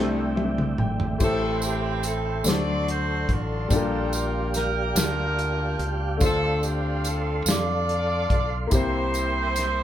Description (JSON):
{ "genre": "slow gospel", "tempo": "48 BPM (dotted quarters)", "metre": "6/8", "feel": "straight", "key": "unclear", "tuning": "A4 = 439 Hz", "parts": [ { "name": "clear saxophone section", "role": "melody", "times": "0.0-9.8 s", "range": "C3 to D5", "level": "-27 LUFS", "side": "right 1 dB", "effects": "none" }, { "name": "clear tenor saxophone", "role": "melody", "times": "0.0-0.8 s", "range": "A3", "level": "-37 LUFS", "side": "right 3 dB", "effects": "none" }, { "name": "warm baby grand piano", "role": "accompaniment", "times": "0.0-9.8 s", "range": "A2 to G5", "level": "-29 LUFS", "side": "left 4 dB", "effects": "none" }, { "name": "mellow tonewheel organ", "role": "sustained chords", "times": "0.0-9.8 s", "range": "A3 to C6", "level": "-32 LUFS", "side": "right 3 dB", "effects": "fast rotary speaker, chorus vibrato" }, { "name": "modern bright fingered electric bass", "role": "bass", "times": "0.0-9.8 s", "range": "Ab1 to F2", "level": "-28 LUFS", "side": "equal", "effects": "none" }, { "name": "warm soul drum kit", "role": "drums", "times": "0.4-9.8 s", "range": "crash cymbal, hi-hat, kick drum, snare drum, toms", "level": "-26 LUFS", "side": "equal", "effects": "none" }, { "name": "tambourine", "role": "percussion", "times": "1.2-9.8 s", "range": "none", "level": "-31 LUFS", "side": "right 4 dB", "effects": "none" } ], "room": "light reverb", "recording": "band playing live in one room", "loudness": "-22 LUFS", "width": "side -11 dB against mid", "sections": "0.0-1.2 A section; 1.2-9.8 B section", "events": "drum fill 0.0-1.2; grand piano fill 0.0-1.2", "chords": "0.0 C69; 1.2 Am7; 2.5 D7; 3.7 Gm7/Bb; 6.2 Dm7; 8.7 C7" }